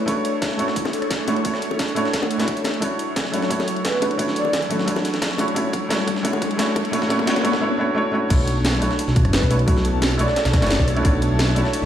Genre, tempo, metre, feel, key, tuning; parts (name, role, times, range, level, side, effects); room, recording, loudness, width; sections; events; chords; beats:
liquid drum and bass; 175 BPM; 4/4; straight; B minor; A4 = 441 Hz
felt-muted upright piano; accompaniment; 0.0-11.9 s; A3 to E5; -23 LUFS; equal; low-pass filter, dub echo
airy breathy pad; sustained chords; 0.0-11.9 s; F#3 to A5; -28 LUFS; right 1 dB; chorus, phaser, sidechain pumping
breakbeat sampler-style drum kit; drums; 0.1-11.9 s; hi-hat, snare drum; -28 LUFS; equal; high-pass filter on hats, high-pass filter on snare
electronic kick drum; drums; 0.1-11.1 s; -23 LUFS; equal; overdrive, high-pass filter on kick
garage drum kit; drums; 0.1-11.8 s; crash cymbal, hi-hat, rim click, snare drum; -27 LUFS; equal
bongos; percussion; 0.9-7.3 s; -31 LUFS; left 4 dB
riser; sound effects; 4.3-7.6 s; -28 LUFS; left 2 dB
breathy flute-like synth lead; melody; 3.8-4.8, 9.3-10.8 s; A4 to D5; -28 LUFS; equal; lush chorus, cassette tape, dub echo
dark detuned saw bass; bass; 8.3-11.9 s; F#1 to B1; -20 LUFS; equal; tube saturation
moderate recital hall reverb, RT60 1.3 s, digital ambience; played on a big sound system in a bare room, stone room reverb; -18 LUFS; side -10 dB against mid
0.0-8.3 A section; 8.3-11.9 B section
build-up 0.0-8.3; drum fill 2.8-7.6; riser 4.3-7.6; drop 8.3-11.9
0.0 Bm11 (rootless); 2.8 Dmaj9; 8.1 Dmaj9/A; 8.3 Bm11
| 0.08 0.42 0.76 1.10 | 1.45 1.79 2.13 2.48 | 2.82 3.16 3.50 3.85 | 4.19 4.53 4.88 5.22 | 5.56 5.91 6.25 6.59 | 6.93 7.28 7.62 7.96 | 8.30 8.65 8.99 9.33 | 9.68 10.02 10.36 10.71 | 11.05 11.39 11.73